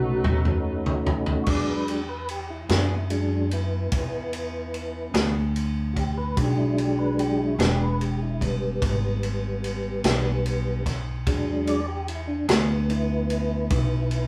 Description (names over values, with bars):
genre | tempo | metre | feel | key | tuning
slow blues | 49 BPM (dotted quarters) | 12/8 | straight | E mixolydian | A4 = 439 Hz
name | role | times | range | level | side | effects
electric guitar through a small old amp | melody | 0.0-1.4 s | F#4 | -33 LUFS | equal | tremolo
mellow saxophone section | sustained chords | 0.0-1.5 s | D#4 to B4 | -41 LUFS | equal | none
mellow tonewheel organ | sustained chords | 0.0-14.3 s | F#3 to D5 | -30 LUFS | equal | slow rotary speaker, chorus vibrato
upright bass | bass | 0.0-14.3 s | E1 to F#2 | -29 LUFS | equal | none
clean electric guitar | accompaniment | 0.2-12.7 s | B2 to G#4 | -34 LUFS | equal | tremolo
natural country drum kit | drums | 0.2-14.3 s | crash cymbal, kick drum, ride cymbal, snare drum, toms | -31 LUFS | equal | none
room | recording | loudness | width
moderate studio reverb, RT60 0.9 s | band playing live in one room | -25 LUFS | mono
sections
0.0-1.5 A section; 1.5-14.3 A section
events
drum fill 0.0-1.5; clean electric guitar solo 0.0-1.5; tonewheel organ solo 1.5-14.3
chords
0.0 B7; 1.5 E7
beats
0.25 | 1.48 2.70 3.93 5.15 | 6.38 7.60 8.82 10.04 | 11.27 12.49 13.71